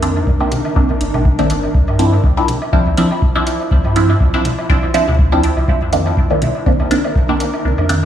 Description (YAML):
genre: dub techno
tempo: 122 BPM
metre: 4/4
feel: swing 55% on 16ths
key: D phrygian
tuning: A4 = 439 Hz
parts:
  - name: granular cloud pad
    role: sustained chords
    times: 0.0-8.1 s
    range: D4 to C5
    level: -23 LUFS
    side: right 1 dB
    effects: built-in reverb, sidechain pumping
  - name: filtered dub chord stab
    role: stabs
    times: 0.0-8.1 s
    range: Eb3 to E4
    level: -17 LUFS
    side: right 1 dB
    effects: phaser, sidechain pumping, dub echo
  - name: warm sub bass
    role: bass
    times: 0.0-8.1 s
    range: G1 to G2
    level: -17 LUFS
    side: equal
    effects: sidechain pumping
  - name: electronic hi-hat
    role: drums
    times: 0.0-8.0 s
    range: none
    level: -28 LUFS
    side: equal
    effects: none
  - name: woodblock and congas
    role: percussion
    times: 0.2-8.1 s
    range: none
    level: -25 LUFS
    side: equal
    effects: overdrive, sidechain pumping on perc, dub echo
  - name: electronic kick drum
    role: drums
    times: 0.3-7.3 s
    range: none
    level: -15 LUFS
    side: equal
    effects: none
room: light reverb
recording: played on a big sound system in a bare room, stone room reverb, vinyl crackle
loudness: -12 LUFS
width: side -10 dB against mid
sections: 0.0-8.1 A section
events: kick drops out 7.6-8.1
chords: 0.0 Cm9; 1.7 Dm9; 5.7 Cm9